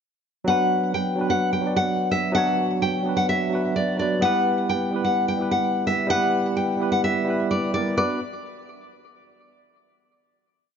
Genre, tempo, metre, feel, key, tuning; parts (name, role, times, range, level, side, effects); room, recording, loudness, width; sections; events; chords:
hip hop; 128 BPM; 4/4; half-time; B minor; A4 = 441 Hz
barky tine electric piano; accompaniment; 0.4-8.2 s; F#3 to D5; -24 LUFS; right 2 dB; medium stereo tremolo
nylon-string guitar; melody; 0.5-8.2 s; D5 to G5; -23 LUFS; left 2 dB; ping-pong delay
light reverb, small room ambience; nothing above 7.5 kHz; -20 LUFS; side -7 dB against mid
0.5-8.0 hook; 8.0-9.8 final chord
0.5 Bm; 4.2 Em; 8.0 Bm